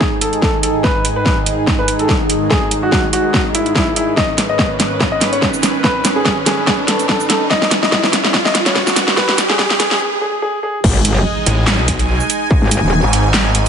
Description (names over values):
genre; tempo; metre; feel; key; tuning
heavy wobble dubstep; 144 BPM; 4/4; swing 55% on 16ths, half-time; G# phrygian; A4 = 440 Hz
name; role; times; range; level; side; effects
warm grand piano; melody; 0.0-10.8 s; E4 to D#5; -20 LUFS; left 1 dB; ping-pong delay
supersaw pad; sustained chords; 0.0-13.7 s; G#2 to G#5; -20 LUFS; right 1 dB; phaser, sidechain pumping, low-pass filter
dubstep drum kit; drums; 0.0-13.7 s; crash cymbal, handclaps, hi-hat, shaker, snare drum; -16 LUFS; equal; studio reverb
electronic kick drum; drums; 0.0-12.6 s; none; -19 LUFS; equal; distortion, studio reverb
riser and impact; sound effects; 1.9-12.5 s; none; -23 LUFS; right 1 dB; none
metallic wobble bass; bass; 10.8-13.0 s; D#1 to G#1; -14 LUFS; equal; distortion, chorus, overdrive
snarling distorted saw bass; bass; 11.5-13.7 s; G#1 to B1; -15 LUFS; equal; distortion, overdrive
room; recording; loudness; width
light reverb, digital ambience; high-pass filter, nothing above 11.0 kHz; -12 LUFS; side -7 dB against mid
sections
0.0-10.8 A section; 10.8-13.7 B section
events
build-up 0.0-10.8; drum fill 0.0-10.0; filter sweep on supersaw synth 0.0-10.8; filter sweep 0.0-10.8; riser 1.9-10.0; break 10.0-10.8; drop 10.8-13.7; impact 10.8-12.5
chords
0.0 G#5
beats
0.01 0.42 | 0.84 1.26 1.67 2.09 | 2.51 2.92 3.34 3.76 | 4.17 4.59 5.01 5.42 | 5.84 6.26 6.67 7.09 | 7.51 7.92 8.34 8.76 | 9.17 9.59 10.01 10.42 | 10.84 11.26 11.67 12.09 | 12.51 12.92 13.34